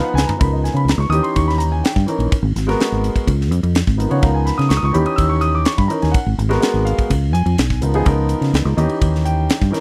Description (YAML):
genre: electric jazz fusion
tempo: 125 BPM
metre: 4/4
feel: straight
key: Db mixolydian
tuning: A4 = 440 Hz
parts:
  - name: warm concert grand piano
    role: accompaniment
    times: 0.0-9.8 s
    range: Fb3 to Fb6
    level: -22 LUFS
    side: equal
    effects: none
  - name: fingered electric bass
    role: bass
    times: 0.1-9.7 s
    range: Ab1 to Db3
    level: -20 LUFS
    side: equal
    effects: none
  - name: crisp fusion drum kit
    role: drums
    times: 0.2-9.8 s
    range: hi-hat, kick drum, ride cymbal, snare drum, toms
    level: -22 LUFS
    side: equal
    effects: none
room: small room ambience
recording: dry, close 1970s-style studio recording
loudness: -17 LUFS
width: mono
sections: 0.4-9.8 A section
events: drum fill 0.0-0.4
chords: 0.4 Db13; 1.1 Eb7b9; 2.3 Abm9; 3.3 Db13; 4.9 Eb7b9; 6.1 Abm9; 7.1 Db13; 8.8 Eb7b9